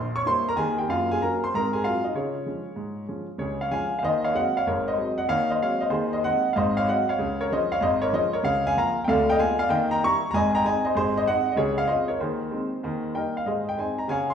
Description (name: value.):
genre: jazz, stride piano.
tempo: 191 BPM.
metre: 4/4.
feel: swing 66% on 8ths.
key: Db major, Ab major from 8.4 s.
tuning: A4 = 440 Hz.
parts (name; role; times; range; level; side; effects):
warm grand piano; solo; 0.0-14.3 s; Ab1 to Db6; -22 LUFS; equal; none.
room: wet large studio reverb, RT60 1.3 s.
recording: band playing live in one room, nothing above 10.6 kHz.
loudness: -22 LUFS.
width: side -7 dB against mid.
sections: 0.0-3.4 A section; 3.4-13.5 B section.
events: none.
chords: 0.0 Eb7b9; 0.9 Gbmaj7; 1.5 Ab7; 2.1 Db; 4.0 Ab7/Eb; 4.7 Ab7; 5.9 Ab/Eb; 6.5 Ab7; 7.2 Db; 8.4 Bbm/Db; 9.1 Ddim7; 9.7 Eb; 10.3 Ab; 11.6 Dbmaj7; 12.2 Ab/Eb; 12.8 Eb; 13.5 Ab.